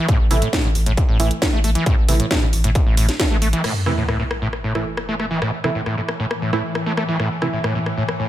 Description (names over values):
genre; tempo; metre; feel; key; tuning
driving peak-time techno; 135 BPM; 4/4; straight; unclear; A4 = 441 Hz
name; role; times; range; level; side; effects
screaming distorted acid line; riff; 0.0-8.3 s; A2 to A3; -23 LUFS; equal; distortion, wide subtle chorus, cassette tape, sidechain pumping, digital delay
electronic kick drum; drums; 0.1-3.3 s; none; -18 LUFS; equal; distortion, overdrive, small room ambience
techno drum kit; drums; 0.1-8.2 s; crash cymbal, hi-hat, rim click, snare drum; -25 LUFS; left 1 dB; overdrive, small room ambience
warm sub bass; bass; 0.2-3.5 s; A1; -20 LUFS; equal; overdrive, sidechain pumping, low-pass filter
filtered dub chord stab; stabs; 0.3-7.6 s; E3 to E4; -26 LUFS; right 4 dB; chorus, sidechain pumping, digital delay
swarming drone; drone; 5.0-8.3 s; A2 to E3; -27 LUFS; left 1 dB; built-in reverb, sidechain pumping
sub drop; sound effects; 3.6-5.4 s; none; -27 LUFS; equal; none
room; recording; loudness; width
light reverb, digital ambience; none; -17 LUFS; side -13 dB against mid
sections
0.0-3.6 A section; 3.6-8.3 B section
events
impact 3.6-5.4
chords
0.0 A5